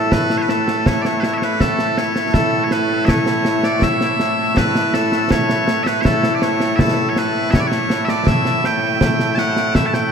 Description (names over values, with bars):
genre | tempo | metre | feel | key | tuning
scottish traditional, Scottish pipe music | 81 BPM | 3/4 | straight | A mixolydian | A4 = 440 Hz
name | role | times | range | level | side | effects
loud bright bagpipes | melody | 0.0-10.1 s | A2 to A5 | -17 LUFS | equal | none
concert snare drum and concert bass drum | drums | 0.1-10.1 s | none | -19 LUFS | equal | none
room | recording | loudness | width
wet huge ambient reverb, RT60 7.4 s | in a vast, echoing space | -15 LUFS | side -6 dB against mid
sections
0.1-10.1 A section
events
none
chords
none